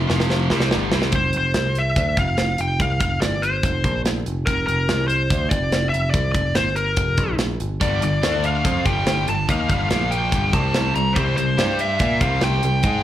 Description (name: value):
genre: hard rock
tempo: 143 BPM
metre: 4/4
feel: straight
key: G minor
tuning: A4 = 444 Hz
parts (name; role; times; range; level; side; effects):
- crunchy overdriven guitar; riff; 0.0-1.1, 7.8-13.0 s; F2 to Bb4; -27 LUFS; left 11 dB; spring reverb, slapback echo
- scooped high-gain guitar; riff; 0.0-1.1, 7.8-13.0 s; F2 to Bb4; -27 LUFS; right 12 dB; distortion, slapback echo
- picked electric bass; bass; 0.0-13.0 s; F1 to Bb2; -22 LUFS; equal; none
- tight metal drum kit; drums; 0.1-12.9 s; hi-hat, kick drum, snare drum; -23 LUFS; right 1 dB; none
- smooth overdriven lead guitar; melody; 1.2-13.0 s; Bb4 to Bb5; -22 LUFS; left 1 dB; slapback echo
room: little or no reverb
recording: live gig heard through the venue's PA, club reverb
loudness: -18 LUFS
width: side -12 dB against mid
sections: 0.0-1.1 A section; 1.1-13.0 B section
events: drum fill 0.0-1.1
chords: 0.5 G5; 1.1 F5; 1.5 C; 2.0 F5; 3.2 G5; 3.6 F5; 3.8 Bbsus2; 4.3 Fsus4; 4.9 Bbsus2/C; 5.3 F5; 6.6 Gmadd11; 7.0 Fsus4; 7.2 N.C.; 7.6 G5; 8.2 D5; 8.7 Gm7; 9.9 Bb5; 10.3 G5; 10.5 C5; 11.6 G5; 12.0 C5